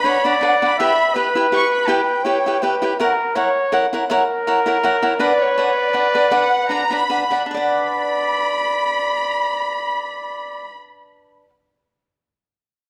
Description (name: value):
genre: mexican folk, mariachi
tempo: 145-164 BPM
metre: 3/4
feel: swing 54% on 8ths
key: B harmonic minor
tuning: A4 = 439 Hz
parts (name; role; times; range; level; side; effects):
- dark symphonic violin section; melody; 0.0-2.8, 5.2-10.7 s; C#5 to C#6; -23 LUFS; equal; none
- clear trumpet; second line; 0.0-10.7 s; A#4 to E5; -22 LUFS; equal; none
- cavaquinho; accompaniment; 0.0-11.5 s; D4 to G5; -23 LUFS; equal; none
room: wet recital hall reverb, RT60 1.4 s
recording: dark, warm production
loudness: -18 LUFS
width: mono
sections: 0.0-7.5 A section; 7.5-10.0 B section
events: slowing down 5.2-7.5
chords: 0.0 Bm; 0.8 Em; 3.0 F#7; 5.2 Bm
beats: 0.05 0.42 | 0.78 1.15 1.52 | 1.88 2.25 2.62 | 2.99 3.36 3.73 | 4.10 4.47 4.83 | 5.20 5.57 5.94 | 6.32 6.70 7.10 | 7.50 7.91 8.32 | 8.73 9.14 9.55